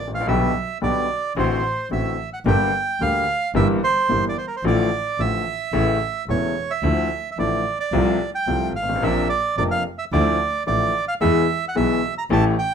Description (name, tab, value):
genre	tango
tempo	110 BPM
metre	4/4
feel	rubato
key	D minor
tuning	A4 = 440 Hz
part	bandoneon	melody	0.0-12.7 s	Bb4 to Bb5	-23 LUFS	right 5 dB	none
part	warm double bass	bass	0.0-12.5 s	E1 to E2	-26 LUFS	right 2 dB	none
part	bright upright piano	accompaniment	0.1-12.5 s	E1 to G#4	-22 LUFS	left 3 dB	none
room	light reverb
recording	minimal, uncompressed stereo recording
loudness	-19 LUFS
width	side -7 dB against mid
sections	0.0-12.7 A section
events	none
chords	0.3 G/B; 1.4 D7/A; 2.5 Gm; 3.5 Edim/G; 4.6 Dm/A; 5.7 A; 6.8 Dmadd9; 7.9 F/C; 9.0 Bbadd9; 10.1 Dmadd9; 11.2 E